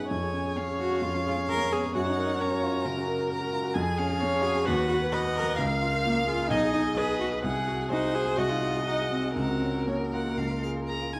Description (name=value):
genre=quick classical-period movement for piano quartet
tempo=130 BPM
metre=4/4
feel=rubato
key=F# major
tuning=A4 = 440 Hz
part: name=rich violin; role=melody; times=0.0-11.1 s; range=G#4 to E#5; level=-34 LUFS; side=equal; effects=none
part: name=clear violin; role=second line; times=0.0-11.2 s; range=C#5 to A#5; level=-38 LUFS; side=equal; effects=none
part: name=clear baby grand piano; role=accompaniment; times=0.0-11.2 s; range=B1 to B4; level=-32 LUFS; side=equal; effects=none
part: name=rich cello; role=second line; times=0.6-10.9 s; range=A#3 to B4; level=-33 LUFS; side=equal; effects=none
room=moderate recital hall reverb, RT60 1.6 s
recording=close, detailed microphones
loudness=-28 LUFS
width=mono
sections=0.0-11.2 A section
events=none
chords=0.1 C#/E#; 1.9 F#; 3.7 C#/E#; 4.7 B/D#; 5.6 A#m/C#; 6.5 G#m/B; 7.4 G#7/B#; 9.4 F#/C#; 10.4 C#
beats=| 0.11 0.57 1.03 1.49 | 1.95 2.40 2.85 3.30 | 3.75 4.21 4.66 5.12 | 5.58 6.04 6.51 6.97 | 7.45 7.92 8.38 8.86 | 9.37 9.88 10.38 10.88